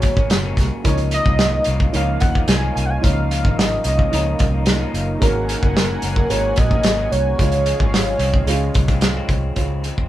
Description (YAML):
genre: indie pop, bedroom pop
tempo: 110 BPM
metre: 4/4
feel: straight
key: Db major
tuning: A4 = 441 Hz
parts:
  - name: warm velvety synth lead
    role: melody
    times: 0.0-9.0 s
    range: Bb4 to Ab5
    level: -23 LUFS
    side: equal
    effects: chorus
  - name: dark upright piano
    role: accompaniment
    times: 0.0-10.1 s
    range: F3 to Db5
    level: -28 LUFS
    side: right 4 dB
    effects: none
  - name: electric guitar through a small old amp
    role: accompaniment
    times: 0.0-10.1 s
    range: Ab2 to Eb4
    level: -28 LUFS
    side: left 2 dB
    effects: warbly pitch drift
  - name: loose indie drum kit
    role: drums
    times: 0.0-10.1 s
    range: hi-hat, kick drum, snare drum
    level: -18 LUFS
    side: equal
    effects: none
  - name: vintage muted fingered electric bass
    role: bass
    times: 0.2-10.1 s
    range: Gb1 to Eb2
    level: -21 LUFS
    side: equal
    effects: none
  - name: warm analog pad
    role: sustained chords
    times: 0.9-9.5 s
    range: Db4 to Ab5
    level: -31 LUFS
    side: right 1 dB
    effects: chorus
room: light reverb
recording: band playing live in one room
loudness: -15 LUFS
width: side -14 dB against mid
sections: 0.0-9.6 A section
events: none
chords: 0.0 Ab9sus4; 0.9 Db69; 5.2 Ab9sus4; 7.4 Dbmaj7